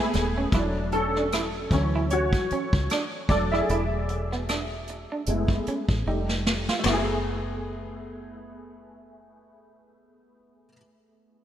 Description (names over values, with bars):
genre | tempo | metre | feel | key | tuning
R&B, neo-soul | 76 BPM | 4/4 | swing 56% on 16ths | F# minor | A4 = 440 Hz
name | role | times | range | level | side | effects
warm upright piano | accompaniment | 0.0-11.4 s | E3 to E5 | -28 LUFS | equal | ensemble chorus
dark studio string section | sustained chords | 0.0-0.5 s | A3 to B5 | -41 LUFS | left 1 dB | none
deep dub fingered electric bass | bass | 0.1-10.7 s | D#1 to D2 | -29 LUFS | equal | none
vintage brush drum kit | drums | 0.1-7.1 s | crash cymbal, hi-hat, kick drum, rim click, snare drum, toms | -27 LUFS | equal | gated reverb
electric guitar through a small old amp | second line | 0.2-7.1 s | B3 to F#4 | -33 LUFS | right 4 dB | lush chorus
room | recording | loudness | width
moderate lush hall reverb, RT60 2.3 s | bright 1980s-style digital production | -23 LUFS | side -10 dB against mid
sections
0.5-6.8 A section; 6.8-10.0 B section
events
upright piano solo 0.5-6.8; drum fill 6.0-6.8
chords
0.0 F#m11 (rootless); 0.5 E7sus4; 1.7 Dmaj7; 3.3 E7sus4; 5.3 F#m11; 6.0 F9; 6.8 F#m11